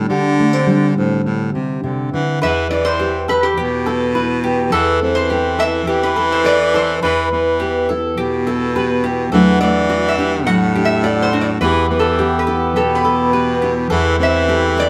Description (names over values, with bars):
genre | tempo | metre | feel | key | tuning
acoustic folk duo or small band | 104 BPM | 4/4 | straight | E minor | A4 = 439 Hz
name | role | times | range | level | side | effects
nylon-string guitar | accompaniment | 0.0-14.9 s | E2 to A4 | -20 LUFS | equal | none
bright baritone saxophone | bass | 0.0-14.9 s | A2 to E3 | -21 LUFS | equal | none
lap resonator guitar | second line | 2.4-14.9 s | G4 to F#5 | -21 LUFS | equal | none
mandolin | arpeggios | 2.4-14.9 s | F#4 to B4 | -25 LUFS | equal | none
accordion | sustained chords | 11.6-14.9 s | E3 to G4 | -25 LUFS | equal | none
room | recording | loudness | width
moderate stone room reverb, RT60 1.0 s | band playing live in one room | -16 LUFS | mono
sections
0.0-2.4 A section; 2.4-14.9 B section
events
resonator guitar played with a steel bar solo 2.4-14.9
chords
0.0 D7sus4; 2.4 Em; 4.7 Am/E; 7.0 Em; 9.3 D/E; 11.6 Em; 13.9 Am/E